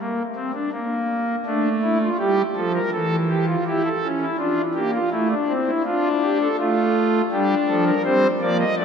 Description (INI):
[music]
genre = classical, baroque-style 4-part fugue for pipe organ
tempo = 82 BPM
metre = 4/4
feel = straight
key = G minor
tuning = A4 = 440 Hz
[part]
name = pipe organ, foundations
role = solo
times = 0.0-8.8 s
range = E3 to Eb5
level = -19 LUFS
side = equal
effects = none
[sound]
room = wet cathedral reverb, RT60 4.7 s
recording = none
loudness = -19 LUFS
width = side -7 dB against mid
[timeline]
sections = 0.0-8.8 A section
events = none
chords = 0.0 N.C.; 1.5 Dm/A; 2.9 A7/E; 4.4 Dm; 7.3 Gm